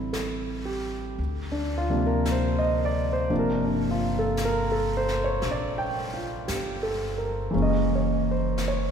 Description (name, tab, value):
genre	jazz ballad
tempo	57 BPM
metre	4/4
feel	swing 67% on 8ths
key	unclear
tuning	A4 = 437 Hz
part	warm concert grand piano	accompaniment	0.0-8.9 s	C3 to G5	-25 LUFS	right 1 dB	none
part	upright bass	bass	0.0-8.9 s	Gb1 to D2	-30 LUFS	left 1 dB	none
part	jazz brush drum kit	drums	0.1-8.9 s	brushed snare drum, hi-hat, snare drum	-38 LUFS	left 2 dB	none
room	wet church reverb, RT60 3.1 s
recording	recorded in a church or concert hall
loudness	-24 LUFS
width	side -7 dB against mid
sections	0.0-8.9 A section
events	none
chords	0.0 Am7; 1.2 Ebmaj13/D; 3.3 Gm7; 7.5 Gb9